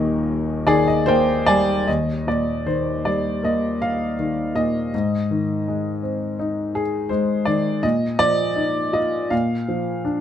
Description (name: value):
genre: classical, lyrical solo piano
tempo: 73-84 BPM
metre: 4/4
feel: rubato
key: Eb major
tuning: A4 = 441 Hz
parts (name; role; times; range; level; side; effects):
- dark baby grand piano; solo; 0.0-10.2 s; Eb1 to Ab5; -19 LUFS; left 1 dB; none
room: light reverb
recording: close, detailed microphones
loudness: -19 LUFS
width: side -10 dB against mid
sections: 0.0-1.9 A section; 1.9-10.2 B section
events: grand piano fill 0.3-1.9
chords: 0.0 Eb; 4.9 Ab; 7.8 Bbsus4; 9.3 Bb